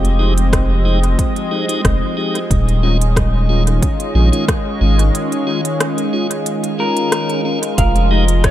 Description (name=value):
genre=ambient dub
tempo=91 BPM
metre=4/4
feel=swing 53% on 16ths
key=unclear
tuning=A4 = 440 Hz
part: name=warm analog pad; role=sustained chords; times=0.0-8.5 s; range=Eb3 to Eb5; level=-20 LUFS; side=equal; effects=chorus
part: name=warm sub bass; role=bass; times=0.0-8.5 s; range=Eb1 to Bb1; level=-14 LUFS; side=equal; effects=none
part: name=organic electronic drum kit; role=drums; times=0.0-8.5 s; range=hi-hat, rim click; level=-23 LUFS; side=equal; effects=overdrive, dub echo
part: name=tonewheel organ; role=stabs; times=0.2-8.2 s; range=Ab3 to G4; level=-23 LUFS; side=left 2 dB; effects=stopped rotary speaker, dub echo
part: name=electronic kick drum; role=drums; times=0.5-8.5 s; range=none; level=-18 LUFS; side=equal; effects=overdrive
part: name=electric slide guitar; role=melody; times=6.8-8.5 s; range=Bb4 to F5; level=-20 LUFS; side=equal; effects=dub echo
room=light reverb, digital ambience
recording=none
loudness=-14 LUFS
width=side -13 dB against mid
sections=0.0-7.8 A section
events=break 5.1-7.8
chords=0.0 Fm9; 2.5 Eb9sus4; 7.8 Fm9